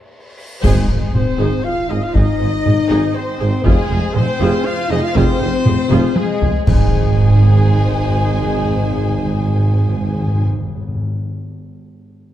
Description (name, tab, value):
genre	cinematic, epic orchestral film score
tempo	119 BPM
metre	3/4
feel	straight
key	Ab major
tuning	A4 = 436 Hz
part	cymbal swell and impact	sound effects	0.4-2.1, 6.7-8.2 s	none	-27 LUFS	equal	none
part	rich symphonic violin section	melody	0.6-10.4 s	Ab4 to Ab5	-30 LUFS	left 3 dB	none
part	mellow hollow small flute group	second line	0.6-10.5 s	Ab4 to Ab5	-29 LUFS	left 1 dB	none
part	rich symphonic violin section	second line	0.6-10.5 s	Ab4 to C5	-31 LUFS	left 1 dB	none
part	warm symphonic viola section	accompaniment	0.6-10.5 s	Eb4 to C5	-26 LUFS	right 1 dB	none
part	dark French horn section	sustained chords	0.6-10.4 s	Ab3 to F4	-22 LUFS	left 5 dB	none
part	bright trumpet section	stabs	0.6-10.5 s	Ab4 to F5	-28 LUFS	equal	none
part	rich symphonic cello section	bass	0.6-10.5 s	F2 to Ab2	-21 LUFS	right 2 dB	none
part	warm symphonic double bass section	bass	0.6-10.5 s	F1 to Ab1	-20 LUFS	right 2 dB	none
part	warm tuba	bass	0.6-10.5 s	F1 to Ab1	-23 LUFS	right 2 dB	none
part	taiko ensemble	drums	0.6-7.6 s	none	-18 LUFS	equal	none
part	clash cymbals and concert bass drum	percussion	0.6-1.6, 6.7-7.6 s	none	-22 LUFS	equal	none
part	timpani	percussion	0.6-1.4, 6.7-11.1 s	Ab2	-22 LUFS	left 1 dB	none
room	moderate scoring stage reverb, RT60 2.0 s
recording	dark, warm production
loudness	-13 LUFS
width	side -12 dB against mid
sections	0.6-6.7 A section; 6.7-9.7 B section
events	break 0.0-0.6; drum fill 0.0-0.6, 5.9-6.7; cymbal swell 0.4; band accent 0.6-1.1, 6.7-7.2; impact 0.6-2.1, 6.7-8.2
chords	0.0 N.C.; 0.6 Ab; 3.6 Fm; 6.7 Ab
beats	0.13 | 0.64 1.15 1.65 | 2.15 2.65 3.15 | 3.65 4.15 4.65 | 5.15 5.66 6.16 | 6.67 7.18 7.68 | 8.18 8.69 9.19